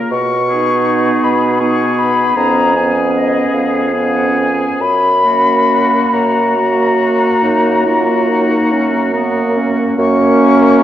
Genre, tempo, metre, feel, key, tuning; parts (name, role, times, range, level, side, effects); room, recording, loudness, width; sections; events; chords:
classical, slow romantic movement for wind quintet; 44-55 BPM (dotted quarters); 12/8; rubato; F# major; A4 = 441 Hz
clear oboe; second line; 0.0-10.0 s; F#4 to A#4; -21 LUFS; left 2 dB
clear French horn; accompaniment; 0.0-10.8 s; A#3 to B3; -18 LUFS; equal
warm clarinet; accompaniment; 0.0-10.8 s; B3 to F#4; -18 LUFS; right 4 dB
silver concert flute; melody; 0.1-10.8 s; D#5 to C#6; -16 LUFS; left 3 dB
warm bassoon; bass; 0.1-10.8 s; E#2 to B2; -17 LUFS; right 2 dB
wet scoring stage reverb, RT60 1.7 s; worn, warbling old tape, cassette tape, warbly pitch drift; -11 LUFS; side -11 dB against mid
0.0-10.0 A section
0.1 G#m/B; 2.4 C#7/E#; 4.8 F#